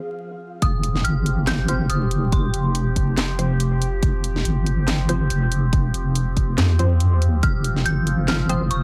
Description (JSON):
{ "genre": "deep dubstep", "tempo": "141 BPM", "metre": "4/4", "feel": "swing 57% on 16ths, half-time", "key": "unclear", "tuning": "A4 = 439 Hz", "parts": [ { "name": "dark detuned synth bell", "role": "melody", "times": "0.0-2.9, 7.4-8.8 s", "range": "C6 to G6", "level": "-30 LUFS", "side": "equal", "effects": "chorus, dub echo" }, { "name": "overtone-sweeping drone", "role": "sustained chords", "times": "0.0-8.8 s", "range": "F3 to Ab4", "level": "-33 LUFS", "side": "equal", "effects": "chorus, built-in reverb, phaser" }, { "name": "filtered dub chord stab", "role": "stabs", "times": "0.0-8.6 s", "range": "F3 to C5", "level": "-31 LUFS", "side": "equal", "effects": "analog chorus, dub echo" }, { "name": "deep soft wobble bass", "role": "bass", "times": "0.6-8.8 s", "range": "F1 to F2", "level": "-22 LUFS", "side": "equal", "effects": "chorus, tube saturation" }, { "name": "electronic kick drum", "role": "drums", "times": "0.6-7.5 s", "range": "none", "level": "-22 LUFS", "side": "equal", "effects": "none" }, { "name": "garage drum kit", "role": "drums", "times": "0.6-8.8 s", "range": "handclaps, hi-hat, snare drum", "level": "-28 LUFS", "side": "equal", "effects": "none" } ], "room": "little or no reverb", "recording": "vinyl crackle", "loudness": "-21 LUFS", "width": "mono", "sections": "0.6-8.8 A section", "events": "stop 0.2-0.6; drop 0.6-8.8", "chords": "0.0 F5", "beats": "0.20 | 0.62 1.05 1.47 1.90 | 2.32 2.75 3.17 3.60 | 4.03 4.45 4.88 5.30 | 5.73 6.15 6.58 7.00 | 7.43 7.86 8.28 8.71" }